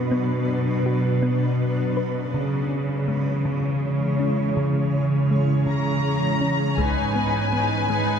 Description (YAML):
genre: cinematic, hybrid orchestral and electronic film score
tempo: 54 BPM (dotted quarters)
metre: 6/8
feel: straight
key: unclear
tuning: A4 = 443 Hz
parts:
  - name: granular cloud pad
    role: sustained chords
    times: 0.0-8.2 s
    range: D#3 to C#5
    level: -26 LUFS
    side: equal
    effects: built-in reverb
  - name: rich symphonic cello section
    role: bass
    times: 0.0-8.2 s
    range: G#2 to C#3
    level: -23 LUFS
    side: right 1 dB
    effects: none
  - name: thumb-piano-like synth pluck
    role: arpeggios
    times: 0.1-8.1 s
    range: C#3 to B4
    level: -29 LUFS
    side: left 2 dB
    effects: chorus, ping-pong delay
  - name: clear symphonic violin section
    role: melody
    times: 5.7-8.2 s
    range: G#5 to A#5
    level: -26 LUFS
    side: left 5 dB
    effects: none
  - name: clear symphonic viola section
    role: accompaniment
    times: 6.8-8.2 s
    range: D#4 to B4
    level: -27 LUFS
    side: right 3 dB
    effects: none
  - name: taiko ensemble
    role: drums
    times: 6.8-8.2 s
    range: none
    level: -30 LUFS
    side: equal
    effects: none
room: wet concert hall reverb, RT60 1.9 s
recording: heard from further back in the room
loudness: -20 LUFS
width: side -7 dB against mid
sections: 0.0-6.8 A section; 6.8-8.2 B section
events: build-up 0.0-6.8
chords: 0.0 Bm; 2.3 C#m; 6.8 G#m